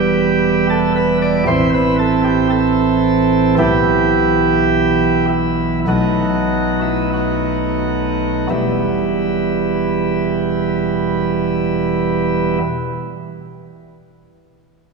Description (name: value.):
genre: classical, chorale-style piece for pipe organ.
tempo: 43-59 BPM.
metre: 4/4.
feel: rubato.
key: E minor.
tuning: A4 = 439 Hz.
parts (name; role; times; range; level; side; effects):
chamber organ, principal chorus; solo; 0.0-12.6 s; E1 to D5; -14 LUFS; right 2 dB; none.
room: wet church reverb, RT60 2.9 s.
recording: studio reverb.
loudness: -14 LUFS.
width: side -4 dB against mid.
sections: 0.0-8.5 A section; 8.5-13.9 B section.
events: slowing down 0.0-8.5.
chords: 0.0 Em; 1.5 Am; 3.6 Em/B; 5.9 B7; 8.5 Em.